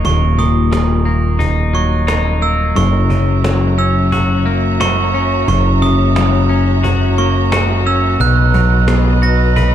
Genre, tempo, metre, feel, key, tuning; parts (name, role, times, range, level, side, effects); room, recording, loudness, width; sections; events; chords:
post-rock; 88 BPM; 4/4; straight; A4 = 436 Hz
clean electric guitar; arpeggios; 0.0-9.7 s; D#2 to B4; -17 LUFS; left 4 dB; spring reverb, tape echo
glockenspiel with brass mallets; arpeggios; 0.0-9.7 s; C#6 to A#6; -20 LUFS; right 8 dB; tape echo
growling picked electric bass; bass; 0.0-9.7 s; D#1 to B1; -14 LUFS; equal; overdrive
cajon; drums; 0.0-9.7 s; -23 LUFS; equal
rich symphonic string section; sustained chords; 2.8-9.7 s; F#4 to A#5; -22 LUFS; right 1 dB
light reverb; dark, warm production; -11 LUFS; side -10 dB against mid
0.0-9.7 A section
0.0 D#m7; 2.8 F#7; 8.2 Bmaj7